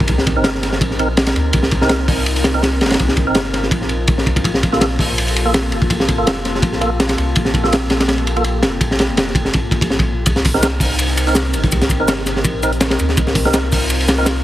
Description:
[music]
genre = drum and bass, jungle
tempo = 165 BPM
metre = 4/4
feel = swing 54% on 16ths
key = C dorian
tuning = A4 = 440 Hz
[part]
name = warbly tape-like pad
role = sustained chords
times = 0.0-14.4 s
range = Bb3 to Bb4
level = -24 LUFS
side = left 1 dB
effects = chorus, built-in reverb
[part]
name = soft dub sub bass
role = bass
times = 0.0-14.4 s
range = F1 to D2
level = -21 LUFS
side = equal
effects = none
[part]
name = crunchy breakbeat drum kit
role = drums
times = 0.0-14.4 s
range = hi-hat, kick drum, ride cymbal, snare drum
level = -16 LUFS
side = equal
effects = none
[part]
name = tonewheel organ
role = stabs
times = 0.4-14.3 s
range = Bb3 to Bb4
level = -22 LUFS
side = right 2 dB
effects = overdrive, fast rotary speaker, dub echo
[part]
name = breakbeat sampler-style drum kit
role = drums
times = 10.3-14.4 s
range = hi-hat, shaker, snare drum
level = -26 LUFS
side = left 1 dB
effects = high-pass filter on perc, high-pass filter on snare, high-pass filter on hats, high-pass filter on room
[sound]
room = studio reverb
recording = heavily compressed radio sound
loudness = -14 LUFS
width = side -14 dB against mid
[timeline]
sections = 0.0-14.4 A section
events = none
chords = 0.0 Cm7; 4.4 Gm9; 10.3 Cm7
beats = | 0.08 0.45 0.81 1.17 | 1.54 1.90 2.27 2.63 | 2.99 3.36 3.72 4.08 | 4.45 4.81 5.17 5.54 | 5.90 6.26 6.63 6.99 | 7.36 7.72 8.08 8.45 | 8.81 9.17 9.54 9.90 | 10.27 10.63 10.99 11.36 | 11.72 12.08 12.45 12.81 | 13.17 13.54 13.90 14.27

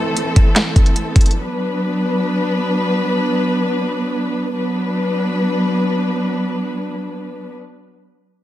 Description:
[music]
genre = hip hop, trap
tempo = free time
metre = none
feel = none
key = B phrygian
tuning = A4 = 439 Hz
[part]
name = muted studio string section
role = sustained chords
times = 0.0-7.5 s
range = E3 to B4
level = -18 LUFS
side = equal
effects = none
[part]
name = downlifter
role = sound effects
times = 0.0-1.4 s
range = none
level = -37 LUFS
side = equal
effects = none
[part]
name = trap drum kit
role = drums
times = 0.2-1.4 s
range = handclaps, hi-hat, kick drum, snare drum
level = -12 LUFS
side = equal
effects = vintage 12-bit sampler grit
[sound]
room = light reverb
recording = dense, heavily limited modern master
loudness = -16 LUFS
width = side -13 dB against mid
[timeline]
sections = 0.0-4.5 A section; 4.5-7.7 B section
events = none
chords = 0.0 Am; 1.4 Bm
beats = free time

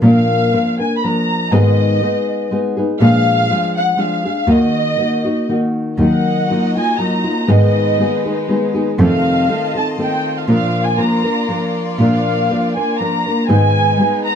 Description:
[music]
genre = mexican folk, mariachi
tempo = 121 BPM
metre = 3/4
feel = rubato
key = Eb harmonic minor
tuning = A4 = 438 Hz
[part]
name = dark studio violin section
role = melody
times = 0.0-14.4 s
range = Eb5 to Cb6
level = -19 LUFS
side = equal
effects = none
[part]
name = nylon-string guitar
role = accompaniment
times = 0.0-14.4 s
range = F2 to Bb4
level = -16 LUFS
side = left 1 dB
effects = none
[part]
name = dark cello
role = bass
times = 0.0-13.6 s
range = Eb2 to Bb2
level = -14 LUFS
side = right 1 dB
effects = none
[part]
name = rich chamber violin section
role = sustained chords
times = 6.0-14.4 s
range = Ab3 to A5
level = -27 LUFS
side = left 1 dB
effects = none
[sound]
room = moderate small room ambience, RT60 0.5 s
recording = dark, warm production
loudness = -13 LUFS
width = side -8 dB against mid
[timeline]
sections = 0.0-6.0 A section; 6.0-14.4 A section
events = none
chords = 0.0 Bb; 1.5 Abm; 3.0 Bb7; 4.5 Ebm; 6.0 Ebmadd9; 7.5 Abm; 9.0 F7; 10.5 Bb; 13.5 Abm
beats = | 0.02 0.53 1.02 | 1.52 2.01 2.51 | 3.01 3.50 3.99 | 4.48 4.97 5.48 | 5.99 6.50 7.00 | 7.50 8.00 8.49 | 8.99 9.49 9.98 | 10.48 10.98 11.48 | 11.99 12.49 12.99 | 13.49 13.99

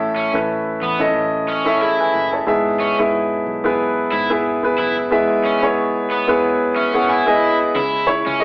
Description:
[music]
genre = pop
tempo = 91 BPM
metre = 4/4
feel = swing 56% on 16ths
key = E major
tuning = A4 = 441 Hz
[part]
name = warm concert grand piano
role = accompaniment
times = 0.0-8.4 s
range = G#2 to A5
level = -16 LUFS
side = equal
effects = none
[part]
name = fingered electric bass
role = bass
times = 0.0-8.4 s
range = F#1 to E2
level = -34 LUFS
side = equal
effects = none
[part]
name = cranked stack guitar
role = riff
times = 0.2-8.4 s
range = B3 to E4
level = -21 LUFS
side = equal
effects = overdrive
[sound]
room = moderate large studio reverb, RT60 1.1 s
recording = band playing live in one room, AM radio sound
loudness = -15 LUFS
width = side -31 dB against mid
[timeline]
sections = 0.0-7.8 A section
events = grand piano fill 6.4-7.8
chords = 0.0 A; 7.8 C#m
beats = 0.49 1.15 1.81 | 2.47 3.13 3.79 4.45 | 5.11 5.77 6.43 7.09 | 7.75 8.41

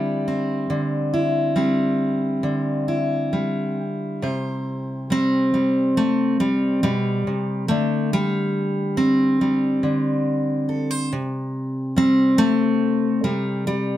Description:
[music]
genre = folk, solo fingerstyle acoustic guitar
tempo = 70 BPM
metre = 4/4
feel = rubato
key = C major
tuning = A4 = 444 Hz
[part]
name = fingerpicked steel-string acoustic guitar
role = solo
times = 0.0-14.0 s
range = B2 to C5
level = -19 LUFS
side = equal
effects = none
[sound]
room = moderate small room reverb, RT60 0.6 s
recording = none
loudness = -19 LUFS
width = side -13 dB against mid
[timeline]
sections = 0.0-4.2 A section; 4.2-14.0 B section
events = none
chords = 0.0 Gsus4/D; 4.2 C; 7.7 Gsus4/D; 11.1 C5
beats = | 0.71 1.57 2.44 3.33 | 4.22 5.10 5.97 6.83 | 7.70 8.55 9.40 10.26 | 11.12 11.96 12.81 13.67

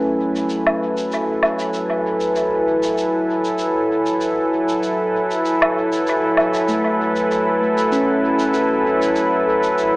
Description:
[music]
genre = ambient dub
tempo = 97 BPM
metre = 4/4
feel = straight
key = F# minor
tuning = A4 = 438 Hz
[part]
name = warm analog pad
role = sustained chords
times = 0.0-10.0 s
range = F#3 to G#5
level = -17 LUFS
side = equal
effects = chorus
[part]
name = handpan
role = arpeggios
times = 0.0-1.2, 6.7-10.0 s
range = A3 to A4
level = -23 LUFS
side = equal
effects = low-pass filter, analog delay
[part]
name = shaker and woodblock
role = drums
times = 0.4-9.9 s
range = none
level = -23 LUFS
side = equal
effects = dub echo
[sound]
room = moderate echo chamber reverb, RT60 2.4 s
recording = echo-heavy mix, AM radio sound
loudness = -16 LUFS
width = side -22 dB against mid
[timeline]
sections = 0.0-10.0 A section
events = filter sweep on handpan 0.0-10.0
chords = 0.0 F#m11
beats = 0.50 1.12 | 1.74 2.36 2.98 3.60 | 4.21 4.83 5.45 6.07 | 6.69 7.31 7.93 8.54 | 9.16 9.78

